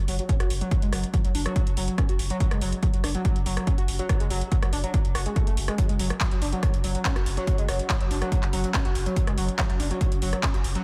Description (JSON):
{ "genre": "driving peak-time techno", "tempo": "142 BPM", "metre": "4/4", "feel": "straight", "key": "unclear", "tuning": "A4 = 440 Hz", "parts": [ { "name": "warm sub bass", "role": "bass", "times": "0.0-10.8 s", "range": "F#1", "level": "-31 LUFS", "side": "equal", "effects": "overdrive, sidechain pumping, low-pass filter" }, { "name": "warbly tape-like pad", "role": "texture", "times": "0.6-10.8 s", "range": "C#4 to F#5", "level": "-44 LUFS", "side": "equal", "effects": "none" }, { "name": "overdriven synth lead", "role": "riff", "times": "0.1-10.8 s", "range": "F#3 to F#4", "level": "-33 LUFS", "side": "equal", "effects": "distortion, lush chorus, sidechain pumping, diffuse ambient delay" }, { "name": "techno drum kit", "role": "drums", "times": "0.1-10.8 s", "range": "handclaps, hi-hat, rim click", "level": "-35 LUFS", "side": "equal", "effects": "sidechain pumping on hats, sidechain pumping on cymbals" }, { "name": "electronic kick drum", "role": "drums", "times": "0.3-10.5 s", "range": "none", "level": "-27 LUFS", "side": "equal", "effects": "none" }, { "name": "breakbeat sampler-style drum kit", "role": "drums", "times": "5.8-10.8 s", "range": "hi-hat, snare drum", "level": "-47 LUFS", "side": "equal", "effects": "none" } ], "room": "light reverb", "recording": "faint mains hum", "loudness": "-25 LUFS", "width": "mono", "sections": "0.0-10.8 A section", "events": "none", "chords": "0.0 F#5" }